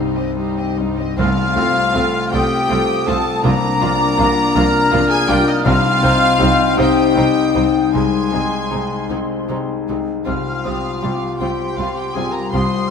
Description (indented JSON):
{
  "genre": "cinematic, emotional film score for orchestra",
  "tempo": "53 BPM (dotted quarters)",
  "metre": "6/8",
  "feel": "rubato",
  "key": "unclear",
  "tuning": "A4 = 440 Hz",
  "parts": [
    { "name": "warm symphonic violin section", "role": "second line", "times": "0.0-12.6 s", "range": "C4 to Eb5", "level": "-30 LUFS", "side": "left 2 dB", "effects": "none" },
    { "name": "clear concert grand piano", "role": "accompaniment", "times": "0.0-12.9 s", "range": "C2 to C5", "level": "-23 LUFS", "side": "left 2 dB", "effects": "none" },
    { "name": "warm studio viola section", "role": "accompaniment", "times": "0.0-12.6 s", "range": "C3 to Eb4", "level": "-28 LUFS", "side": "right 2 dB", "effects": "none" },
    { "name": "concert harp", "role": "arpeggios", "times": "0.0-12.9 s", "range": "C3 to D5", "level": "-23 LUFS", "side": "left 8 dB", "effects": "none" },
    { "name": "dark symphonic double bass section", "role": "bass", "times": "0.0-12.6 s", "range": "C2", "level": "-26 LUFS", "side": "right 4 dB", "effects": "none" },
    { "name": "warm symphonic violin section", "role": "melody", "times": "1.2-12.9 s", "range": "Eb5 to C6", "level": "-22 LUFS", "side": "left 3 dB", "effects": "none" },
    { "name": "dark cor anglais", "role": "second line", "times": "1.2-12.9 s", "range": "Eb4 to C5", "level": "-24 LUFS", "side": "right 1 dB", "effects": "none" },
    { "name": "small flute group", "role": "second line", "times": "1.2-12.9 s", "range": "C6 to F6", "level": "-23 LUFS", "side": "equal", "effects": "none" },
    { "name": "dark French horn section", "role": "sustained chords", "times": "1.2-12.9 s", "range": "Ab3 to G4", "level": "-22 LUFS", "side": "left 3 dB", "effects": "none" },
    { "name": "warm symphonic cello section", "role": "bass", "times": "1.2-12.6 s", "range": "C2", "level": "-28 LUFS", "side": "right 4 dB", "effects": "none" },
    { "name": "timpani", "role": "percussion", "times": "1.2-6.7 s", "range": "C3", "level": "-25 LUFS", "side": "right 1 dB", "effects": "none" }
  ],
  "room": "wet concert hall reverb, RT60 1.9 s",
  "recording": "none",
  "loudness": "-14 LUFS",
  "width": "side -6 dB against mid",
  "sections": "0.0-1.2 A section; 1.2-12.9 B section",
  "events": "none",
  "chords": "0.0 Cm; 1.2 F/C; 3.4 Bb/C; 5.7 Cm; 7.9 Ab/C; 10.3 Fmadd9/C",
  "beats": "| 1.18 2.33 | 3.44 4.55 | 5.66 6.78 | 7.93 9.10 | 10.27 11.40 | 12.52"
}